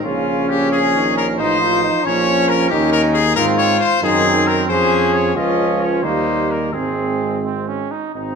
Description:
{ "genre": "classical, brass quintet", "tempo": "89 BPM (dotted quarters)", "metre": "6/8", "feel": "rubato", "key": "Ab major", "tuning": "A4 = 440 Hz", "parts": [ { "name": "mellow trumpet", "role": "melody", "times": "0.0-8.4 s", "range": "Eb4 to Eb5", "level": "-19 LUFS", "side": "left 5 dB", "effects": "none" }, { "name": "mellow trumpet", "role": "second line", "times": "0.0-8.4 s", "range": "Bb3 to Eb4", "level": "-23 LUFS", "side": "right 5 dB", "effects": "none" }, { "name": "clear French horn", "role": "accompaniment", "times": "0.0-8.4 s", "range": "C4 to Ab4", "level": "-21 LUFS", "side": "left 3 dB", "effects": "none" }, { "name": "warm euphonium", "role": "accompaniment", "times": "0.0-8.4 s", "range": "Db3 to C4", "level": "-23 LUFS", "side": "right 4 dB", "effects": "none" }, { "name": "mellow tuba", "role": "bass", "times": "0.0-8.4 s", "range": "Ab1 to Ab2", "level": "-22 LUFS", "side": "right 2 dB", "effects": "none" } ], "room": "moderate recital hall reverb, RT60 1.4 s", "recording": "minimal, uncompressed stereo recording", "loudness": "-14 LUFS", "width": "side -6 dB against mid", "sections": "0.0-8.2 A section", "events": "none", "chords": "0.0 Bbm; 1.4 F7/A; 2.1 Bbm; 2.7 Eb7; 3.4 Ab; 4.0 Ab7/Gb; 4.7 Db/F; 5.4 Db; 6.0 Eb; 6.7 Ab", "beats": "| 0.04 0.72 | 1.39 2.06 | 2.71 3.37 | 4.03 4.69 | 5.36 6.04 | 6.74 7.45 | 8.15" }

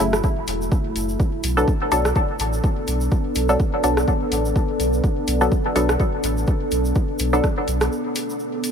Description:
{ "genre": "dub techno", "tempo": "125 BPM", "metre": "4/4", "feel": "swing 56% on 16ths", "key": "unclear", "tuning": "A4 = 440 Hz", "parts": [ { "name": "deep dark ambient pad", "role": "sustained chords", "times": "0.0-8.7 s", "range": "A3 to A4", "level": "-25 LUFS", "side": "equal", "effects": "chorus, built-in reverb, sidechain pumping" }, { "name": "filtered dub chord stab", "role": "stabs", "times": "0.0-7.5 s", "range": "C#3 to A4", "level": "-24 LUFS", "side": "left 1 dB", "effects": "chorus, phaser, sidechain pumping, dub echo" }, { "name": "warm sub bass", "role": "bass", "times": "0.0-7.9 s", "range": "E1 to B1", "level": "-23 LUFS", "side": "equal", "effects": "tube saturation, sidechain pumping" }, { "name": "deep house drum kit", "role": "drums", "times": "0.0-8.7 s", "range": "hi-hat, rim click", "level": "-27 LUFS", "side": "equal", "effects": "overdrive" }, { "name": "tube shaker", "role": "percussion", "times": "0.1-8.7 s", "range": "none", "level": "-36 LUFS", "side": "right 2 dB", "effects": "none" }, { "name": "electronic kick drum", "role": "drums", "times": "0.2-7.5 s", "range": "none", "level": "-21 LUFS", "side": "equal", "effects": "none" } ], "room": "little or no reverb", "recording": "none", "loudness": "-18 LUFS", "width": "side -7 dB against mid", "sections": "0.0-8.7 A section", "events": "break 7.9-8.7", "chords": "0.0 F#m7; 1.2 Bm7", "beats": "0.24 0.72 | 1.20 1.68 2.16 2.64 | 3.12 3.60 4.08 4.56 | 5.04 5.52 6.00 6.48 | 6.96 7.44 7.92 8.40" }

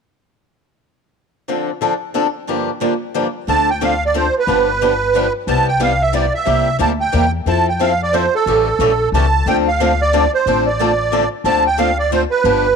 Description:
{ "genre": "acoustic string swing (jazz manouche)", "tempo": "181 BPM", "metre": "3/4", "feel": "swing 62% on 8ths", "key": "D minor", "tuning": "A4 = 442 Hz", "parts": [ { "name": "picked steel-string acoustic guitar", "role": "accompaniment", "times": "1.5-12.7 s", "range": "G2 to A4", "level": "-23 LUFS", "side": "right 11 dB", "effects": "none" }, { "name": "picked swing-style acoustic guitar", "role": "accompaniment", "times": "1.5-12.7 s", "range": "G2 to A4", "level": "-20 LUFS", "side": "left 14 dB", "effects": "none" }, { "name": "musette accordion", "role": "melody", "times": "3.5-12.8 s", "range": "A4 to A5", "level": "-16 LUFS", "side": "right 5 dB", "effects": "none" }, { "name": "upright bass", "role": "bass", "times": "3.5-12.8 s", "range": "G1 to F2", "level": "-21 LUFS", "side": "left 2 dB", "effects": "none" } ], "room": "light reverb, small room ambience", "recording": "1960s-style stereo with parts hard left and right", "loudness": "-14 LUFS", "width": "side -6 dB against mid", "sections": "1.5-3.5 A section; 3.5-11.4 B section; 11.4-12.8 B section", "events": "none", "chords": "1.5 Dm7; 2.5 Gm7; 3.5 Dm7; 4.5 G7; 5.5 Cmaj7; 6.5 C7; 7.5 Fmaj7; 8.5 A7; 9.5 Dm7", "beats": "| 1.49 1.82 2.15 | 2.48 2.82 3.15 | 3.48 3.81 4.15 | 4.48 4.81 5.14 | 5.47 5.81 6.14 | 6.47 6.80 7.13 | 7.47 7.80 8.13 | 8.46 8.79 9.13 | 9.46 9.79 10.12 | 10.45 10.79 11.12 | 11.45 11.78 12.11 | 12.45" }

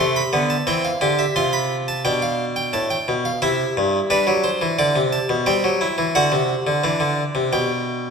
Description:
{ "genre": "classical, baroque-style 3-part fugue for harpsichord", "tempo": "88 BPM", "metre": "3/4", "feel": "straight", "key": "C major", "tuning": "A4 = 440 Hz", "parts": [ { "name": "harpsichord", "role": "solo", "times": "0.0-8.1 s", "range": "G2 to C6", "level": "-18 LUFS", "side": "equal", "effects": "none" } ], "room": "wet concert hall reverb, RT60 1.7 s", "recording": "none", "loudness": "-18 LUFS", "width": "side -5 dB against mid", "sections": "0.0-8.1 A section", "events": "none", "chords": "0.0 C; 1.4 F/C; 2.1 G/B; 3.4 C; 4.1 G (rootless); 5.5 Emadd9; 6.2 D; 7.5 G/B", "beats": "| 0.00 0.68 1.37 | 2.06 2.74 3.42 | 4.10 4.78 5.47 | 6.15 6.84 7.53" }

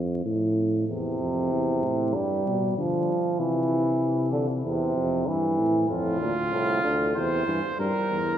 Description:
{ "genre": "classical, imitative canzona for brass ensemble", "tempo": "96 BPM", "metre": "4/4", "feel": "straight", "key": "unclear", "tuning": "A4 = 438 Hz", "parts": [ { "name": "warm tuba", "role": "bass", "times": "0.0-8.4 s", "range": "C2 to D3", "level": "-27 LUFS", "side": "equal", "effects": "none" }, { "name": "clear euphonium", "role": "accompaniment", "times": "0.9-8.2 s", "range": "A2 to G3", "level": "-25 LUFS", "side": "right 1 dB", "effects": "none" }, { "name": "clear trumpet", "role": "second line", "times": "5.9-8.4 s", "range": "F4 to C5", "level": "-27 LUFS", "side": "right 2 dB", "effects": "none" } ], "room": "wet church reverb, RT60 3.8 s", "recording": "minimal, uncompressed stereo recording, vinyl crackle", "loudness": "-23 LUFS", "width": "side -10 dB against mid", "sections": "0.0-8.4 A section", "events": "none", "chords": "0.0 F; 0.9 C/E; 2.1 G; 3.4 C; 4.6 C/E; 5.9 F; 7.2 C/E", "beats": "0.25 | 0.89 1.51 2.15 2.77 | 3.39 4.02 4.65 5.28 | 5.90 6.52 7.16 7.79" }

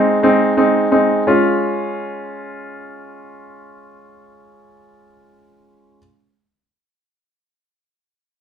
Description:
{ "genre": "pop", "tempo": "56 BPM (dotted quarters)", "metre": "6/8", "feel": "straight", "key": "Db major", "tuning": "A4 = 441 Hz", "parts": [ { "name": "bright concert grand piano", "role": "accompaniment", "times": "0.0-6.0 s", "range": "Ab3 to F4", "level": "-15 LUFS", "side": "equal", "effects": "none" } ], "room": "wet large studio reverb, RT60 0.8 s", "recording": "band playing live in one room", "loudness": "-13 LUFS", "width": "side -8 dB against mid", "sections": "0.0-1.3 A section; 1.3-5.6 B section", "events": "slowing down 0.0-1.3", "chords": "0.0 Ab; 1.3 Db", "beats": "0.23 | 1.27 2.35 | 3.42 4.50" }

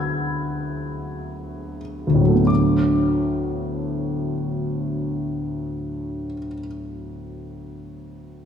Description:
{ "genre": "classical, impressionist solo piano", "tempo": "38-51 BPM", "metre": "4/4", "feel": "rubato", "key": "unclear", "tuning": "A4 = 440 Hz", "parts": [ { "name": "warm concert grand piano", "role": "solo", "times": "0.0-8.5 s", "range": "D2 to G#6", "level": "-22 LUFS", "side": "equal", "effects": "none" } ], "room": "wet concert hall reverb, RT60 2.3 s", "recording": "none", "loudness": "-21 LUFS", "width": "side -8 dB against mid", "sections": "0.0-2.5 A section; 2.5-7.2 B section", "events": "slowing down 0.0-2.5", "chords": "0.0 E9/D; 2.5 D6", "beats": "1.05 | 2.48 3.67 4.86 6.04" }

